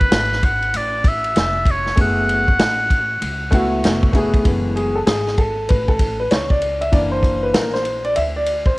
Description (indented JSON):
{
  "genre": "hip hop, jazz-hop",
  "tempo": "97 BPM",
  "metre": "4/4",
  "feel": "swing 64% on 16ths",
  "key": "F# minor",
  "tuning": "A4 = 440 Hz",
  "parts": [
    { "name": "clear oboe", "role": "melody", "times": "0.0-3.8 s", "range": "B4 to F#5", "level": "-20 LUFS", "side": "equal", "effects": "cassette tape, tape echo" },
    { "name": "upright bass", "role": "bass", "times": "0.0-8.8 s", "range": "E#1 to D2", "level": "-26 LUFS", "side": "equal", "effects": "none" },
    { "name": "vintage drum kit", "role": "drums", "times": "0.0-8.8 s", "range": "hi-hat, kick drum, ride cymbal, snare drum", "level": "-19 LUFS", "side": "equal", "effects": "cassette tape" },
    { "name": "warm grand piano", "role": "accompaniment", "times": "2.0-8.8 s", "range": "E3 to E5", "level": "-19 LUFS", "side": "left 1 dB", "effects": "cassette tape" }
  ],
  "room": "light reverb, small room ambience",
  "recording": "home recording on cassette",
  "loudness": "-15 LUFS",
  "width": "side -22 dB against mid",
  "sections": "0.0-4.5 A section; 4.5-8.8 B section",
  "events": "grand piano solo 4.5-8.8",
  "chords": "0.0 F#m11; 6.9 F#aug7"
}